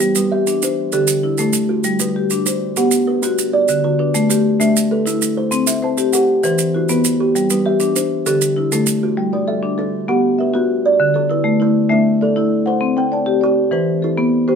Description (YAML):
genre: southern african traditional, mbira-style interlocking cycle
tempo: 131 BPM (dotted quarters)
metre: 12/8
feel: straight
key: G major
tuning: A4 = 437 Hz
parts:
  - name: kalimba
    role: arpeggios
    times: 0.0-14.6 s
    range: D3 to A5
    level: -19 LUFS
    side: right 4 dB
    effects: none
  - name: marimba with soft mallets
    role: arpeggios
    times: 0.0-14.6 s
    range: D3 to G5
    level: -16 LUFS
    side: left 3 dB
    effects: none
  - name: maracas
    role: percussion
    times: 0.0-9.0 s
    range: none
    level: -21 LUFS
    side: right 7 dB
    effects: none
room: moderate studio reverb, RT60 0.7 s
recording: band playing live in one room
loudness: -14 LUFS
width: side -6 dB against mid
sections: 0.0-9.2 A section; 9.2-14.6 B section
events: none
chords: 0.0 G; 0.9 D; 1.9 G; 2.8 Bm; 3.7 D; 4.6 Am; 5.5 C; 6.4 Em; 7.4 G; 8.3 D; 9.2 G5; 10.1 Bm; 11.0 D5; 11.9 Am; 12.8 C5; 13.7 E5